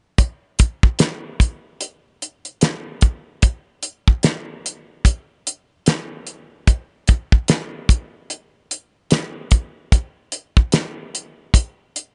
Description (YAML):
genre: indie pop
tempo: 74 BPM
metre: 4/4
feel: swing 60% on 16ths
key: none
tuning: none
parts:
  - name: damped 70s drum kit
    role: drums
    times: 0.2-12.1 s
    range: hi-hat, kick drum, snare drum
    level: -18 LUFS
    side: equal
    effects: none
room: little or no reverb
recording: nothing above 10.4 kHz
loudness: -20 LUFS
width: mono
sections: 0.2-12.1 A section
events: none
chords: none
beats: | 0.18 0.99 1.81 2.62 | 3.43 4.24 5.05 5.86 | 6.67 7.49 8.30 9.11 | 9.92 10.73 11.54